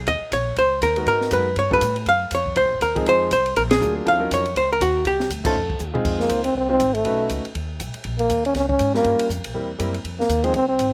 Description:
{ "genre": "jazz, small-group swing and bop", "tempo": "241 BPM", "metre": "4/4", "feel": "swing 59% on 8ths", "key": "F minor from 6.1 s", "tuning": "A4 = 440 Hz", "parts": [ { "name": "upright bass", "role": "bass", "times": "0.0-10.9 s", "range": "Gb1 to A2", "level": "-31 LUFS", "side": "equal", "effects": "none" }, { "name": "archtop guitar, miked and amplified", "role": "melody", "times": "0.1-5.9 s", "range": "Gb4 to F5", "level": "-21 LUFS", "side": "equal", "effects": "none" }, { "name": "compact cocktail drum kit", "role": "drums", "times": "0.1-10.9 s", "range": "crash cymbal, hi-hat, kick drum, ride cymbal, snare drum, toms", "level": "-32 LUFS", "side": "equal", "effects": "none" }, { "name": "clear concert grand piano", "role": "accompaniment", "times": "1.0-10.5 s", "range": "F3 to C5", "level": "-29 LUFS", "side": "equal", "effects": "slapback echo" }, { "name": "warm trombone", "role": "second line", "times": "6.2-10.9 s", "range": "A3 to Db4", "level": "-22 LUFS", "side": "equal", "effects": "none" } ], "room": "little or no reverb", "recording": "recorded outdoors, with no room sound", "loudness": "-21 LUFS", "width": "mono", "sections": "0.0-6.1 A section; 6.1-10.9 B section", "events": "band accent 3.7, 5.4; drum fill 5.8; trombone solo 6.1-10.9", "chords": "0.1 Eb7(no3); 1.1 Abm9; 1.6 G9; 2.1 Gbmaj9; 3.1 Fm7; 3.6 Bb7b13; 4.1 Ebm9; 5.1 Cm9; 5.6 F7; 6.1 Fm7; 7.1 B9; 8.0 Bbm7; 9.0 Gm7b5; 9.5 C7; 10.0 Fm7" }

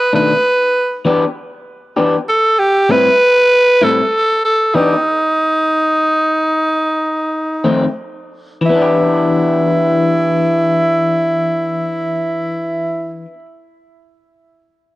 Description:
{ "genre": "blues", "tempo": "57-65 BPM (dotted quarters)", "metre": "12/8", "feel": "straight", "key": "E minor", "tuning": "A4 = 442 Hz", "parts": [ { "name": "growling tenor saxophone", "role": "melody", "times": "0.0-13.3 s", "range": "D#4 to B4", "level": "-13 LUFS", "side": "right 1 dB", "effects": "cassette tape" }, { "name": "electric guitar through a small old amp", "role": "accompaniment", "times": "0.1-13.5 s", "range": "F2 to G4", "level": "-16 LUFS", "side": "left 2 dB", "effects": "harmonic tremolo, cassette tape" } ], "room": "light reverb, studio ambience", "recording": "home recording on cassette", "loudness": "-12 LUFS", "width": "side -18 dB against mid", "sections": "0.0-8.7 A section; 8.7-12.9 B section", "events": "slowing down 3.5-8.7; stop 4.7-7.6", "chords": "0.0 B7#9; 1.1 Em7; 2.9 Am7; 4.7 Em7; 7.6 F7; 8.7 Em7" }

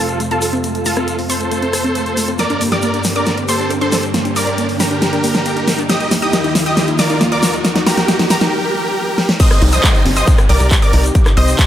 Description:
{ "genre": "uplifting trance", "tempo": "137 BPM", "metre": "4/4", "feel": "straight", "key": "C dorian", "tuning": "A4 = 439 Hz", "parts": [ { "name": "big supersaw lead", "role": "melody", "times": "0.0-11.7 s", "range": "F4 to Eb5", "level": "-19 LUFS", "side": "right 1 dB", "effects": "sidechain pumping, low-pass filter, dub echo" }, { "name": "wide unison pluck", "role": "second line", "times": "0.0-11.7 s", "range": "A5 to Eb6", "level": "-25 LUFS", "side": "equal", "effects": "sidechain pumping, tape echo" }, { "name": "analog string pad", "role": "sustained chords", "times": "0.0-11.7 s", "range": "Eb2 to G4", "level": "-23 LUFS", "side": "equal", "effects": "ensemble chorus, sidechain pumping" }, { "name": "wide unison pluck", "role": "arpeggios", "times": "0.0-11.6 s", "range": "A3 to G5", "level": "-22 LUFS", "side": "left 1 dB", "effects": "sidechain pumping, tape echo" }, { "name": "riser and downlifter", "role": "sound effects", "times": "0.2-11.7 s", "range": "none", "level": "-25 LUFS", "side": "right 1 dB", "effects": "none" }, { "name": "big-room dance drum kit", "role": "drums", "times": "0.1-11.7 s", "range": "crash cymbal, handclaps, hi-hat, rim click, snare drum", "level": "-18 LUFS", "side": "equal", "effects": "none" }, { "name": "tube shaker", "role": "percussion", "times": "0.1-11.7 s", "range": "none", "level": "-27 LUFS", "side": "left 2 dB", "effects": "none" }, { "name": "electronic kick drum", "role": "drums", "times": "9.4-11.7 s", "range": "none", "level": "-12 LUFS", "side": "equal", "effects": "none" }, { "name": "tight sequencer bass", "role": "bass", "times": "9.6-11.6 s", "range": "G1 to C2", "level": "-14 LUFS", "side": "equal", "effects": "tube saturation, sidechain pumping" } ], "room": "moderate huge ambient reverb, RT60 7.5 s", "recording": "none", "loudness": "-12 LUFS", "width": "side -11 dB against mid", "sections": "0.0-9.4 A section; 9.4-11.7 B section", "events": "build-up 0.0-9.4; filter sweep on synth arpeggio sound 0.0-9.4; riser 0.2-8.5; drum fill 2.4-8.5, 9.2; break 8.5-9.4; drop 9.4-11.7", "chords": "0.0 F; 2.4 Gm; 5.9 Eb; 9.4 Cm" }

